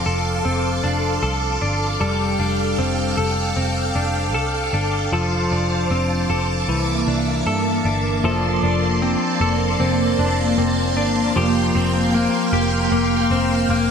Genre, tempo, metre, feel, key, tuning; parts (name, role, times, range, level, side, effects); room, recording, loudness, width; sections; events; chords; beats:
dream pop; 77 BPM; 4/4; straight; F major; A4 = 440 Hz
string machine, violins; sustained chords; 0.0-13.9 s; Bb3 to D6; -21 LUFS; right 1 dB; phaser, ensemble chorus
semi-hollow electric guitar; arpeggios; 0.0-13.9 s; E3 to A4; -22 LUFS; left 2 dB; wide subtle chorus, tape echo
vintage muted picked electric bass; bass; 0.1-13.9 s; F1 to G2; -23 LUFS; right 1 dB
moderate shimmer reverb, RT60 4.1 s; -17 LUFS; side -7 dB against mid
0.0-8.2 A section; 8.2-13.9 B section
0.0 F69; 5.1 Dm7/F; 6.7 C13; 8.2 Bbmaj9/F; 11.4 C7sus4/F
0.45 1.23 | 2.01 2.79 3.56 4.34 | 5.12 5.90 6.68 7.46 | 8.24 9.02 9.80 10.58 | 11.36 12.14 12.91 13.70